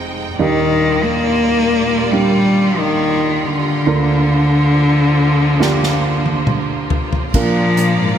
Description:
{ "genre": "pop ballad", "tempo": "69 BPM", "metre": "4/4", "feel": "straight", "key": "Eb major", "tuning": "A4 = 439 Hz", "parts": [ { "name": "warm grand piano", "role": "accompaniment", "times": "0.0-8.2 s", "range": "F1 to Bb4", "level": "-21 LUFS", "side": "right 4 dB", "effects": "none" }, { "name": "clear studio string section", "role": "sustained chords", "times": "0.0-8.2 s", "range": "D2 to Bb5", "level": "-22 LUFS", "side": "right 1 dB", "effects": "none" }, { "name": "rich cello", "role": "melody", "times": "0.4-8.2 s", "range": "D3 to Bb3", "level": "-15 LUFS", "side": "left 1 dB", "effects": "none" }, { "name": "unplugged drum kit", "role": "drums", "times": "5.6-8.0 s", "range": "crash cymbal, hi-hat, kick drum, snare drum, toms", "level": "-20 LUFS", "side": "equal", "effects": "gated reverb" }, { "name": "picked steel-string acoustic guitar", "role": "arpeggios", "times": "7.3-8.2 s", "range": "Bb2 to Bb3", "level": "-24 LUFS", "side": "left 5 dB", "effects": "lush chorus, digital delay" }, { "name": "dark chamber cello section", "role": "bass", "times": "7.3-8.2 s", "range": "Ab2 to Bb2", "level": "-20 LUFS", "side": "left 1 dB", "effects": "none" } ], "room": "moderate lush hall reverb, RT60 3.2 s", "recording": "bright 1980s-style digital production", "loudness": "-13 LUFS", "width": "side -9 dB against mid", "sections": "0.0-7.3 A section", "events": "drum fill 5.6-7.3", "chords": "0.4 Ebmaj7; 3.9 Bb/D; 7.3 Bb" }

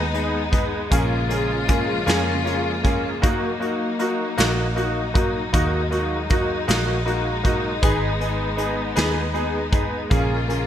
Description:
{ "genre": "six-eight pop ballad", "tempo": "52 BPM (dotted quarters)", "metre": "6/8", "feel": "straight", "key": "Eb minor", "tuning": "A4 = 440 Hz", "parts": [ { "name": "warm studio string section", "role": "sustained chords", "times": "0.0-10.7 s", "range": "Db3 to F4", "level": "-26 LUFS", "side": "left 2 dB", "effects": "none" }, { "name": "vintage muted fingered electric bass", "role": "bass", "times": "0.0-10.7 s", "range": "Ab1 to F2", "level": "-26 LUFS", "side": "equal", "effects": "none" }, { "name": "clear concert grand piano", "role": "accompaniment", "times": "0.1-10.7 s", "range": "Bb3 to Ab4", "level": "-24 LUFS", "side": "equal", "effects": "ensemble chorus" }, { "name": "vintage brush drum kit", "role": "drums", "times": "0.1-10.7 s", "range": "hi-hat, kick drum, snare drum", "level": "-23 LUFS", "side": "equal", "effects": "gated reverb" } ], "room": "light reverb", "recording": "bright 1980s-style digital production", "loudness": "-19 LUFS", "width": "side -10 dB against mid", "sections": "0.0-10.7 A section", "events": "none", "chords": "0.0 Abm; 0.9 Bbm7; 3.2 Ebm; 7.8 Abm; 10.1 Bbm7" }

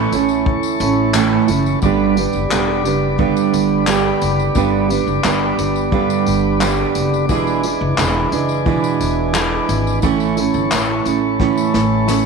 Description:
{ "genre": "acoustic pop", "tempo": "88 BPM", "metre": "4/4", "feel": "straight", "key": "unclear", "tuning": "A4 = 441 Hz", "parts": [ { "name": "fingerpicked steel-string acoustic guitar", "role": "accompaniment", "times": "0.0-12.3 s", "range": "E2 to G4", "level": "-17 LUFS", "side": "right 9 dB", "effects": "none" }, { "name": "mellow tonewheel organ", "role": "sustained chords", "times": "0.0-12.3 s", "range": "E4 to D6", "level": "-22 LUFS", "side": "left 4 dB", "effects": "slow rotary speaker" }, { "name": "upright bass", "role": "bass", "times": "0.0-12.3 s", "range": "E1 to A1", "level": "-22 LUFS", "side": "left 3 dB", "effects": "none" }, { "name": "vintage brush drum kit", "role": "drums", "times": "0.1-12.2 s", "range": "handclaps, kick drum, snare drum, tambourine", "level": "-22 LUFS", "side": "left 3 dB", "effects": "none" }, { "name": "tambourine", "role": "percussion", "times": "0.1-12.2 s", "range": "none", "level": "-32 LUFS", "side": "left 18 dB", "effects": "none" } ], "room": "moderate echo chamber reverb, RT60 1.8 s, small room ambience", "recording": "1960s-style stereo with parts hard left and right", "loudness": "-14 LUFS", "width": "side -4 dB against mid", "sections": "0.0-1.8 A section; 1.8-12.3 B section", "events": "drum fill 11.4-12.3", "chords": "0.0 A; 1.8 G; 7.3 E7; 10.0 A" }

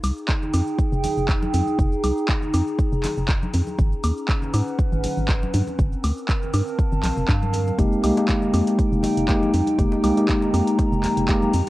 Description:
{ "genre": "deep house", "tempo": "120 BPM", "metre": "4/4", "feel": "swing 54% on 16ths", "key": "F minor", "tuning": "A4 = 441 Hz", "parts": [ { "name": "organ-like FM bass", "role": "bass", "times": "0.0-11.6 s", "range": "F1 to Ab2", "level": "-23 LUFS", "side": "equal", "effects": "sidechain pumping" }, { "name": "punchy analog drum machine", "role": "drums", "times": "0.0-11.6 s", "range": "handclaps, hi-hat, shaker, woodblock", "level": "-30 LUFS", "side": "equal", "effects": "overdrive, cassette tape" }, { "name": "warbly tape-like pad", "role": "texture", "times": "0.1-11.7 s", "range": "Ab3 to Bb5", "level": "-26 LUFS", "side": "equal", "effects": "chorus, built-in reverb, sidechain pumping" }, { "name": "electronic kick drum", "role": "drums", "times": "0.3-11.4 s", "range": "none", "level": "-22 LUFS", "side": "equal", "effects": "cassette tape" }, { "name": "congas and bongos", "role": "percussion", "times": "0.4-11.6 s", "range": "none", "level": "-34 LUFS", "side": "left 2 dB", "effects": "sidechain pumping on perc" }, { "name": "mellow tine electric piano", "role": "stabs", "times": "7.8-11.5 s", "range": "Ab3 to G4", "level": "-20 LUFS", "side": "left 1 dB", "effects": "slow stereo tremolo, sidechain pumping, low-pass filter, analog delay" } ], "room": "light reverb", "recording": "home recording on cassette", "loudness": "-19 LUFS", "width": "side -17 dB against mid", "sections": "0.0-11.7 A section", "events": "none", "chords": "0.0 Fm11; 3.8 Abm11; 5.5 Gm11; 7.8 Fm11" }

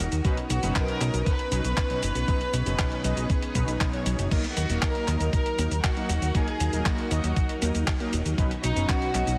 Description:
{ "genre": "italo disco", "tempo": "118 BPM", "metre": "4/4", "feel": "straight", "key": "unclear", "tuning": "A4 = 444 Hz", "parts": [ { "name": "rich chamber violin section", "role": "melody", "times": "0.0-9.4 s", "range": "D#4 to B4", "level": "-34 LUFS", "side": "equal", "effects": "delay" }, { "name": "string machine, full ensemble", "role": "sustained chords", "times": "0.0-9.4 s", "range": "F#3 to C#5", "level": "-37 LUFS", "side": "equal", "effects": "ensemble chorus" }, { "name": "fat analog bass", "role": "bass", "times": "0.0-9.4 s", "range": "Eb1 to Eb2", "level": "-29 LUFS", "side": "equal", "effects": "none" }, { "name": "clean 12-bit digital drum machine", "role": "drums", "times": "0.1-9.4 s", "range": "cabasa, crash cymbal, handclaps, hi-hat", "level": "-35 LUFS", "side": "equal", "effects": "none" }, { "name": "analog synth brass", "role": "stabs", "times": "0.2-9.4 s", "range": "B2 to D#5", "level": "-35 LUFS", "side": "equal", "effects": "chorus" }, { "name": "electronic kick drum", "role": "drums", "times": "0.2-9.0 s", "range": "none", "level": "-29 LUFS", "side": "equal", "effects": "none" } ], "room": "light reverb", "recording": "heavily compressed radio sound, multiband compression, vinyl crackle", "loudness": "-26 LUFS", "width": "mono", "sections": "0.0-9.4 A section", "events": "none", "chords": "0.2 Badd9; 4.3 Ebm; 8.4 Badd9" }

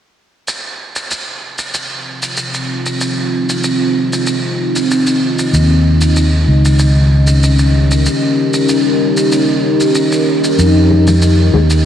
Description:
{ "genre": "ambient dub", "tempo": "95 BPM", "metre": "4/4", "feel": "straight", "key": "F minor", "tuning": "A4 = 440 Hz", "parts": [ { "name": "deep dark ambient pad", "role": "sustained chords", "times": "2.2-11.9 s", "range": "C4 to Eb5", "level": "-14 LUFS", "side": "equal", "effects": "chorus, built-in reverb, cassette tape" }, { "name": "shaker", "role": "drums", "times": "0.5-11.8 s", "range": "none", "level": "-24 LUFS", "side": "right 2 dB", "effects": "small room reverb" }, { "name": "fingered electric bass", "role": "bass", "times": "5.5-11.9 s", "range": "Db2 to F2", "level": "-10 LUFS", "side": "equal", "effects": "none" }, { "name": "filtered dub chord stab", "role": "stabs", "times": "10.9-11.7 s", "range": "Eb4 to Ab4", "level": "-18 LUFS", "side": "left 6 dB", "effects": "phaser, wide subtle chorus, cassette tape, dub echo" } ], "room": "light reverb", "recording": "home recording on cassette", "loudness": "-11 LUFS", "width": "side -10 dB against mid", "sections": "0.5-10.6 A section; 10.6-11.9 B section", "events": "filter sweep on ambient pad 0.5-10.6; break 8.1-10.6", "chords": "0.5 Fm7; 5.5 Eb7; 10.6 Fm7" }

